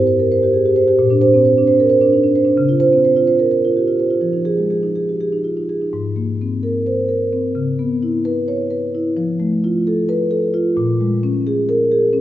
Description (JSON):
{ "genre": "classical, contemporary piece for solo marimba", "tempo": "260 BPM (eighths)", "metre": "7/8", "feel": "rubato", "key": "F minor", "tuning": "A4 = 436 Hz", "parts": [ { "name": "marimba with soft mallets", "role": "solo", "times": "0.0-12.2 s", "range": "Ab2 to Db5", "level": "-14 LUFS", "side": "right 1 dB", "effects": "none" } ], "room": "wet recital hall reverb, RT60 1.4 s", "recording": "nothing above 7.5 kHz", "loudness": "-14 LUFS", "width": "side -13 dB against mid", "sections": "0.0-5.9 A section; 5.9-12.2 B section", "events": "none", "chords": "0.0 Abmaj7; 1.0 Bbadd9; 2.6 Dbmaj7; 4.2 Fm7; 5.9 Abadd9; 7.5 Dbm7; 9.2 F; 10.8 Bbm7", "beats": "0.07 0.29 0.52 0.75 | 0.98 1.21 1.44 1.67 1.90 2.13 2.36 | 2.59 2.82 3.05 3.28 3.52 3.75 3.99 | 4.23 4.47 4.71 4.96 5.20 5.44 5.68 | 5.92 6.15 6.39 6.62 6.85 7.08 7.31 | 7.54 7.77 8.00 8.23 8.46 8.70 8.93 | 9.16 9.39 9.62 9.85 10.08 10.31 10.54 | 10.77 11.00 11.23 11.46 11.68 11.91 12.13" }